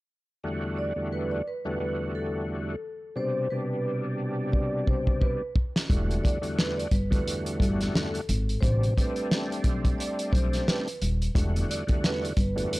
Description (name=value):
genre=hip hop, boom-bap hip-hop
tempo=88 BPM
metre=4/4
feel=swing 58% on 16ths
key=E minor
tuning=A4 = 439 Hz
part: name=overdriven tonewheel organ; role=accompaniment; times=0.4-12.8 s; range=E2 to F#4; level=-30 LUFS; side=equal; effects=chorus vibrato, slow rotary speaker, cassette tape
part: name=vibraphone with soft mallets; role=melody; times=0.8-12.8 s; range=A4 to D5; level=-33 LUFS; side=right 1 dB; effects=none
part: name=warm soul drum kit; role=drums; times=4.5-12.8 s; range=hi-hat, kick drum, snare drum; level=-26 LUFS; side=equal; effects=none
part: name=upright bass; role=bass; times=5.9-12.6 s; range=D#1 to B1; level=-28 LUFS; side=equal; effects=transformer saturation
room=little or no reverb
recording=dry, gritty hardware recording, transformer saturation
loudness=-25 LUFS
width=side -20 dB against mid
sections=0.4-11.4 A section; 11.4-12.8 B section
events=drum fill 4.5-5.9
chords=0.4 Em11; 3.2 Gadd11/B; 5.9 Em11; 8.6 Am11; 11.4 Em11